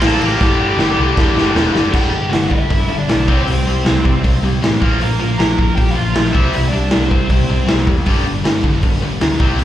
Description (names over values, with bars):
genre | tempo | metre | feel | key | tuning
punk rock | 157 BPM | 4/4 | straight | unclear | A4 = 435 Hz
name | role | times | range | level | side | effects
biting lead guitar | melody | 0.0-7.8 s | Bb3 to Bb5 | -23 LUFS | equal | overdrive, slapback echo, ping-pong delay
high-gain distorted guitar | riff | 0.0-9.6 s | G2 to F4 | -26 LUFS | right 1 dB | distortion, slapback echo
overdriven electric guitar | riff | 0.0-9.6 s | G2 to C4 | -25 LUFS | right 10 dB | slapback echo
tight distorted guitar | riff | 0.0-9.6 s | G2 to C4 | -21 LUFS | left 8 dB | distortion, slapback echo
picked electric bass | bass | 0.0-9.6 s | E1 to E2 | -20 LUFS | equal | none
raw garage drum kit | drums | 0.0-9.6 s | crash cymbal, hi-hat, kick drum, snare drum | -16 LUFS | equal | none
room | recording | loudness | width
small room ambience | live gig heard through the venue's PA, club reverb | -13 LUFS | side -12 dB against mid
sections
0.0-1.9 A section; 1.9-9.6 B section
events
drum fill 0.4-1.9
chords
0.4 G; 3.3 C; 4.8 Bb; 6.3 C; 8.1 G